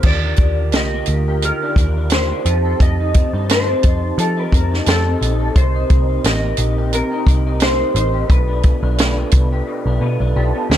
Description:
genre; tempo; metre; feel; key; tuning
indie pop, bedroom pop; 87 BPM; 4/4; swing 55% on 16ths; Eb lydian; A4 = 438 Hz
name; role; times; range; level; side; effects
mellow electric guitar; melody; 0.0-10.3 s; A4 to Eb5; -22 LUFS; left 1 dB; analog chorus, slapback echo
electric guitar through a small old amp; accompaniment; 0.0-10.8 s; B2 to A4; -25 LUFS; left 5 dB; ensemble chorus, vibrato effect
percussive tonewheel organ; accompaniment; 0.0-10.8 s; D3 to A5; -26 LUFS; right 6 dB; chorus vibrato, slow rotary speaker
vintage muted picked electric bass; bass; 0.0-10.8 s; A1 to F3; -18 LUFS; equal; none
compact cocktail drum kit; drums; 0.0-10.8 s; crash cymbal, hi-hat, kick drum, snare drum; -15 LUFS; equal; none
room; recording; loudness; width
small room reverb; none; -14 LUFS; side -11 dB against mid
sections
0.0-10.8 A section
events
drum fill 9.7-10.8; tonewheel organ fill 10.0-10.8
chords
0.0 Ebmaj7; 2.5 F7; 5.6 Cm7; 8.3 G7/B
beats
| 0.04 0.73 1.42 2.11 | 2.80 3.49 4.18 4.87 | 5.55 6.24 6.93 7.62 | 8.30 8.99 9.67 10.36

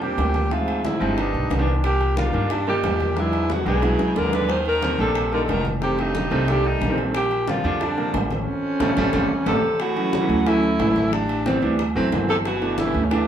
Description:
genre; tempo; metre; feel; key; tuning
Afro-Cuban jazz; 181 BPM; 4/4; straight; Bb major, D major from 9.8 s; A4 = 441 Hz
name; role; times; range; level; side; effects
breathy alto saxophone; melody; 0.0-13.3 s; C4 to C5; -24 LUFS; left 1 dB; plate reverb
warm baritone saxophone; second line; 0.0-13.3 s; E2 to Eb3; -29 LUFS; right 6 dB; none
clear concert grand piano; accompaniment; 0.0-13.3 s; D3 to E5; -25 LUFS; right 1 dB; none
upright bass; bass; 0.0-13.3 s; F1 to G2; -25 LUFS; equal; none
bongos; percussion; 0.0-13.3 s; none; -33 LUFS; left 5 dB; none
congas; percussion; 0.0-13.3 s; none; -32 LUFS; left 2 dB; none
timbales; percussion; 0.2-13.3 s; none; -31 LUFS; right 4 dB; none
room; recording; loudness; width
moderate studio reverb, RT60 0.6 s; small room reverb; -19 LUFS; side -9 dB against mid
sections
0.0-9.8 A section; 9.8-13.3 B section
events
drum fill 3.5-4.5, 9.0-9.8; band accent 8.5-9.8; grand piano fill 9.1-9.8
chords
0.0 Bb6; 0.5 Dm7b5; 1.2 G7b13; 1.8 Cm7; 3.2 E9; 4.5 Eb6; 5.8 F9; 7.1 Bb6; 8.5 A7alt; 9.8 Dmaj9; 11.1 Am9; 11.8 D9; 12.5 G6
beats
0.18 | 0.51 0.84 1.18 1.51 | 1.84 2.17 2.50 2.83 | 3.17 3.50 3.83 4.16 | 4.49 4.82 5.16 5.49 | 5.82 6.15 6.48 6.81 | 7.15 7.48 7.81 8.14 | 8.47 8.80 9.14 9.47 | 9.80 10.13 10.46 10.79 | 11.13 11.46 11.79 12.12 | 12.45 12.78 13.11

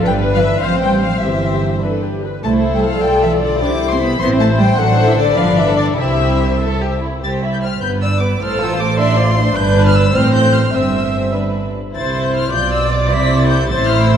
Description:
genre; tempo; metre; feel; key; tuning
quick classical-period movement for string orchestra; 102 BPM (dotted quarters); 6/8; rubato; C major; A4 = 441 Hz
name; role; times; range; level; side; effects
warm chamber violin section; second line; 0.0-14.2 s; B3 to E5; -19 LUFS; left 2 dB; none
warm chamber viola section; accompaniment; 0.0-14.2 s; G4 to E5; -21 LUFS; equal; none
clear symphonic double bass section; bass; 0.0-14.2 s; G1 to C2; -19 LUFS; right 2 dB; none
warm chamber cello section; bass; 0.0-14.2 s; C2 to D4; -19 LUFS; right 2 dB; none
warm chamber violin section; melody; 0.1-14.2 s; C5 to B6; -21 LUFS; left 5 dB; none
room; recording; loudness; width
wet concert hall reverb, RT60 2.3 s; dark, warm production; -13 LUFS; side -8 dB against mid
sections
0.0-7.2 A section; 7.2-14.2 A section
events
none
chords
0.1 G; 0.6 F/A; 1.2 C/G; 1.8 G; 2.4 C; 3.0 G7/B; 3.6 C; 4.2 Am; 4.8 D7/A; 5.4 G; 6.0 C; 7.8 G; 8.4 F/A; 9.0 Dm7/A; 9.6 G; 10.1 Fadd9/A; 10.7 C/G; 11.9 C; 12.5 Bdim; 13.1 C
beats
| 0.07 0.64 | 1.23 1.84 | 2.44 3.04 | 3.62 4.20 | 4.78 5.37 | 5.98 6.61 | 7.24 7.83 | 8.41 8.99 | 9.57 10.15 | 10.75 11.35 | 11.95 12.54 | 13.11 13.68

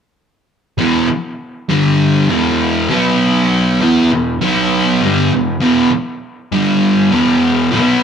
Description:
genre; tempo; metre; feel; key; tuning
rock; 100 BPM; 4/4; straight; E minor; A4 = 440 Hz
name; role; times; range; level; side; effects
sludgy distorted guitar; solo; 0.8-8.0 s; E2 to E4; -12 LUFS; equal; overdrive, analog delay
room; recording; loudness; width
moderate studio reverb, RT60 0.9 s; none; -11 LUFS; side -7 dB against mid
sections
0.8-8.0 A section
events
none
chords
0.8 E5; 1.7 G5; 2.3 E5; 2.9 B5; 3.8 E5; 4.4 B5; 5.0 Em; 6.5 G5; 7.1 E5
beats
| 0.79 1.40 2.00 2.60 | 3.21 3.81 4.41 5.01 | 5.62 6.22 6.82 7.42 | 8.02

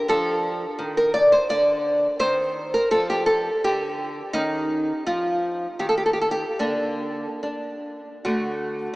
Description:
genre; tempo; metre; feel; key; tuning
classical, baroque-style dance for nylon-string guitar; 72-86 BPM; 3/4; rubato; unclear; A4 = 440 Hz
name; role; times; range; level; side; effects
nylon-string guitar; solo; 0.0-9.0 s; D3 to D5; -21 LUFS; equal; analog chorus
room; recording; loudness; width
wet huge ambient reverb, RT60 4.2 s; dreamy mix soaked in reverb, small speaker sound; -20 LUFS; side -21 dB against mid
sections
0.0-9.0 A section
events
none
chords
0.1 Dm; 2.2 Cm/Eb; 4.3 Eb9; 6.6 Bb/D; 8.2 D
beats
| 0.08 0.78 1.48 | 2.19 2.90 3.62 | 4.34 5.05 5.80 | 6.60 7.43 8.24

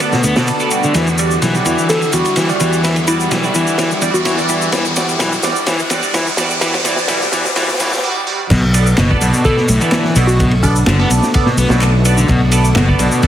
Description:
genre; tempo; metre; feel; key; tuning
breakbeat, breaks; 127 BPM; 4/4; straight; B minor; A4 = 440 Hz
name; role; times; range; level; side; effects
lush unison pad; sustained chords; 0.0-13.3 s; D3 to F#4; -23 LUFS; left 1 dB; chorus, sidechain pumping
band-passed chord stab; stabs; 0.0-13.3 s; G3 to D5; -20 LUFS; right 3 dB; phaser, digital delay
crunchy breakbeat drum kit; drums; 0.0-13.3 s; crash cymbal, kick drum, ride cymbal, snare drum; -19 LUFS; equal; high-pass filter on kick, high-pass filter on cymbals, high-pass filter on snare, high-pass filter on room
punchy analog drum machine; drums; 0.0-13.3 s; handclaps, ride cymbal, shaker; -23 LUFS; left 1 dB; none
riser; sound effects; 0.0-8.0 s; none; -23 LUFS; equal; none
overdriven electric guitar; riff; 0.1-13.3 s; A2 to B3; -19 LUFS; left 1 dB; low-pass filter, digital delay
overdriven fingered electric bass; bass; 0.2-13.1 s; E1 to E2; -16 LUFS; equal; none
soft struck synth lead; melody; 1.9-4.3, 9.4-11.1 s; D4 to A4; -20 LUFS; equal; chorus, AM radio sound, digital delay
room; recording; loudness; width
light reverb, digital ambience; heavily compressed radio sound, multiband compression, high-pass filter; -12 LUFS; side -11 dB against mid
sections
0.0-8.5 A section; 8.5-13.3 B section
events
build-up 0.0-8.5; riser 0.0-8.0; filter sweep on overdriven electric guitar 0.0-8.5; filter sweep 0.0-8.5; drum fill 0.9-8.0; break 8.0-8.5; drop 8.5-13.3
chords
0.0 Bm7; 0.9 Em9; 8.5 Bm7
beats
0.00 0.48 | 0.95 1.42 1.89 2.37 | 2.84 3.31 3.78 4.26 | 4.73 5.20 5.67 6.15 | 6.62 7.09 7.56 8.04 | 8.51 8.98 9.45 9.93 | 10.40 10.87 11.34 11.81 | 12.29 12.76 13.23

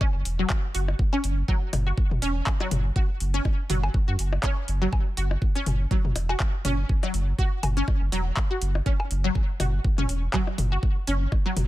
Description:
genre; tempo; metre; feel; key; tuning
minimal techno; 122 BPM; 4/4; swing 56% on 16ths; unclear; A4 = 445 Hz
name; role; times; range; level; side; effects
resonant blip pluck; riff; 0.0-11.5 s; F#3 to F#4; -30 LUFS; equal; ensemble chorus, sidechain pumping, tape echo
electronic kick drum; drums; 0.0-11.4 s; none; -24 LUFS; equal; none
electronic percussion blips and toms; percussion; 0.0-11.7 s; none; -32 LUFS; left 3 dB; digital delay
saturated sub bass; bass; 0.1-11.7 s; E1 to F#2; -25 LUFS; equal; tube saturation, sidechain pumping
garage drum kit; drums; 0.3-11.7 s; handclaps, hi-hat; -33 LUFS; equal; none
room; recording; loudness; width
little or no reverb; none; -22 LUFS; side -16 dB against mid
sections
0.0-11.7 A section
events
none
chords
0.0 F#5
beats
0.01 0.50 | 0.99 1.48 1.98 2.47 | 2.96 3.45 3.94 4.43 | 4.93 5.42 5.91 6.40 | 6.89 7.38 7.88 8.37 | 8.86 9.35 9.85 10.34 | 10.83 11.32

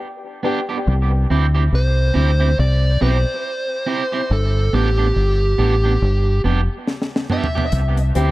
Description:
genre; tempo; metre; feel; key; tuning
dub reggae; 70 BPM; 4/4; swing 59% on 16ths; C major; A4 = 439 Hz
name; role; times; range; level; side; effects
electric guitar at the edge of break-up; accompaniment; 0.4-8.3 s; B3 to G4; -24 LUFS; right 5 dB; harmonic tremolo, dub echo
dark upright piano; stabs; 0.4-0.6, 8.1-8.3 s; G4 to G5; -26 LUFS; left 4 dB; dub echo
deep dub fingered electric bass; bass; 0.9-8.3 s; F1 to D2; -16 LUFS; equal; none
dark smooth lead guitar; melody; 1.8-7.8 s; G4 to E5; -22 LUFS; right 1 dB; overdrive, dub echo
deep reggae drum kit; drums; 6.9-8.3 s; hi-hat, snare drum, toms; -22 LUFS; equal; none
room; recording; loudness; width
little or no reverb; echo-heavy mix; -16 LUFS; side -18 dB against mid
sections
0.0-8.3 A section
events
drum fill 6.9-7.7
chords
0.0 G; 0.9 C; 4.3 G; 7.7 C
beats
0.01 | 0.86 1.72 2.58 3.43 | 4.29 5.15 6.01 6.87 | 7.73

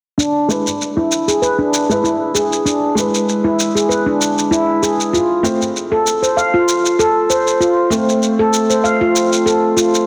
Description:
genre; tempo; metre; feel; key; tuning
organic downtempo; 97 BPM; 4/4; swing 54% on 16ths; E phrygian dominant; A4 = 440 Hz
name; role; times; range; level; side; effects
handpan; arpeggios; 0.2-9.9 s; D4 to F5; -17 LUFS; equal; low-pass filter, delay
shaker; drums; 0.2-10.1 s; none; -24 LUFS; equal; none
felt-muted upright piano; accompaniment; 0.5-10.1 s; G#3 to C5; -22 LUFS; equal; low-pass filter, delay
room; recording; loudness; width
moderate lush hall reverb, RT60 2.0 s; dense, heavily limited modern master; -15 LUFS; mono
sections
0.2-10.1 A section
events
filter sweep on handpan 0.2-10.1; filter sweep on felt piano 0.2-10.1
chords
0.2 E7; 5.1 F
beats
| 0.19 0.81 1.43 2.04 | 2.66 3.28 3.90 4.52 | 5.14 5.75 6.37 6.99 | 7.61 8.23 8.85 9.47

